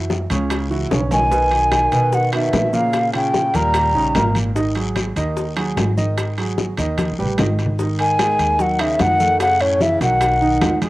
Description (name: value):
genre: Afro-Cuban jazz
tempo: 148 BPM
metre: 4/4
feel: straight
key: G# minor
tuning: A4 = 440 Hz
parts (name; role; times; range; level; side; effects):
- warm concert grand piano; accompaniment; 0.0-10.9 s; A#2 to D#5; -23 LUFS; right 3 dB; cassette tape
- upright bass; bass; 0.0-10.9 s; G#1 to B2; -23 LUFS; equal; none
- bongos; percussion; 0.1-10.9 s; none; -25 LUFS; left 4 dB; none
- congas; percussion; 0.1-10.9 s; none; -27 LUFS; left 1 dB; none
- guiro; percussion; 0.1-10.9 s; none; -35 LUFS; left 4 dB; none
- maracas; percussion; 0.1-10.9 s; none; -43 LUFS; right 5 dB; none
- timbales; percussion; 0.1-10.9 s; none; -28 LUFS; right 3 dB; none
- breathy mellow silver concert flute; melody; 1.1-4.4, 8.0-10.8 s; C#5 to A#5; -17 LUFS; equal; none
- breathy tenor saxophone; second line; 1.1-4.4, 8.0-10.8 s; A2 to G3; -27 LUFS; left 2 dB; cassette tape
room: light reverb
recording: home recording on cassette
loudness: -16 LUFS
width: side -18 dB against mid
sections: 0.0-7.8 A section; 7.8-10.9 B section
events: drum fill 0.9-1.3, 7.0-7.8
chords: 0.0 F#5; 1.3 Bmaj7; 2.9 A#m; 3.7 D#7; 4.6 G#5; 7.0 D#aug; 7.8 G#5; 9.4 F#m7; 10.2 B